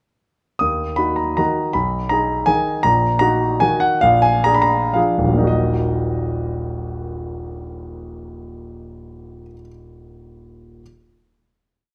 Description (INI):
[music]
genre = classical, piano waltz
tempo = 108-170 BPM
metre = 3/4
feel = rubato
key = Eb minor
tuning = A4 = 440 Hz
[part]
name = warm concert grand piano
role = solo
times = 0.6-10.8 s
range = Eb1 to Eb6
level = -19 LUFS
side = equal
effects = none
[sound]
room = moderate recital hall reverb, RT60 1.6 s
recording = none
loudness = -18 LUFS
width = mono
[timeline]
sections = 0.6-5.5 A section; 5.5-8.7 final chord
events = slowing down 2.3-5.5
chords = 0.6 Ebm; 1.8 Abm/Cb; 2.9 Ebm/Bb; 4.0 Bb7; 5.5 Ebm